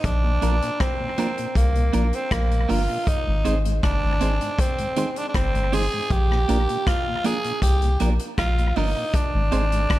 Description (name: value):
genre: roots reggae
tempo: 79 BPM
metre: 4/4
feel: straight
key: Bb mixolydian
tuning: A4 = 441 Hz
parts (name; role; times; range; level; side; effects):
- growling tenor saxophone; melody; 0.0-10.0 s; Bb3 to Ab4; -25 LUFS; right 1 dB; tape echo
- soft dub sub bass; bass; 0.0-10.0 s; G1 to C2; -21 LUFS; equal; none
- vintage drum kit; drums; 0.0-10.0 s; hi-hat, kick drum, rim click; -26 LUFS; equal; none
- mellow tonewheel organ; accompaniment; 0.2-9.8 s; Ab2 to D4; -32 LUFS; left 3 dB; chorus vibrato, slow rotary speaker
- clean electric guitar; accompaniment; 0.4-9.6 s; Bb3 to C5; -30 LUFS; right 5 dB; spring reverb, tape echo
room: light reverb, small room ambience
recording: none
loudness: -20 LUFS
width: side -16 dB against mid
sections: 0.0-10.0 A section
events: none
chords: 0.0 Bb; 3.1 Ab; 6.1 Bb; 9.1 Ab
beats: | 0.04 0.80 1.56 2.31 | 3.07 3.83 4.59 5.35 | 6.10 6.86 7.62 8.38 | 9.13 9.89